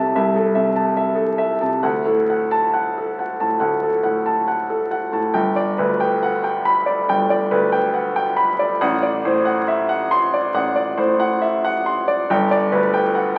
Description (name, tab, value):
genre	classical, romantic character piece for solo piano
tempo	69 BPM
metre	4/4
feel	rubato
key	G major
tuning	A4 = 440 Hz
part	warm grand piano	solo	0.0-13.4 s	G1 to C6	-19 LUFS	equal	none
room	wet recital hall reverb, RT60 1.6 s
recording	very old 78 rpm record, vinyl crackle, nothing above 10.3 kHz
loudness	-19 LUFS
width	mono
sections	0.0-5.3 A section; 5.3-13.4 B section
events	none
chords	0.0 Am/C; 1.8 D; 5.3 G; 8.8 D7/A; 12.3 G